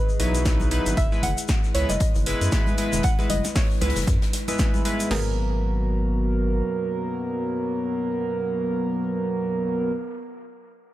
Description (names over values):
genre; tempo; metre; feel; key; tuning
deep house; 116 BPM; 4/4; swing 58% on 16ths; G# minor; A4 = 440 Hz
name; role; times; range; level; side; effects
soft round pluck; melody; 0.0-9.9 s; G#4 to F#5; -31 LUFS; right 1 dB; chorus, ping-pong delay
warbly tape-like pad; sustained chords; 0.0-9.9 s; E3 to D#5; -36 LUFS; left 1 dB; chorus, built-in reverb, vintage 12-bit sampler grit, sidechain pumping
egg shaker; percussion; 0.1-5.1 s; none; -35 LUFS; left 6 dB; none
chorused polysynth; stabs; 0.2-9.9 s; F#3 to B4; -26 LUFS; right 1 dB; sidechain pumping, dub echo
rubbery square bass; bass; 0.2-6.6 s; E1 to F#2; -25 LUFS; equal; tube saturation, sidechain pumping
big rock drum kit; drums; 0.2-5.0 s; hi-hat, snare drum; -38 LUFS; left 4 dB; sidechain pumping on hats, high-pass filter on hats, high-pass filter on snare, high-pass filter on room
punchy analog drum machine; drums; 0.2-5.1 s; hi-hat, snare drum; -31 LUFS; equal; overdrive
congas; percussion; 0.2-4.8 s; none; -34 LUFS; right 2 dB; none
house drum kit; drums; 0.5-5.2 s; crash cymbal, kick drum, snare drum; -23 LUFS; equal; none
room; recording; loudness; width
small room ambience; none; -21 LUFS; side -14 dB against mid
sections
0.0-5.1 A section; 5.1-9.2 B section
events
drop 0.0-5.1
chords
0.0 C#m11 (rootless); 1.0 F#9sus4; 5.1 G#m9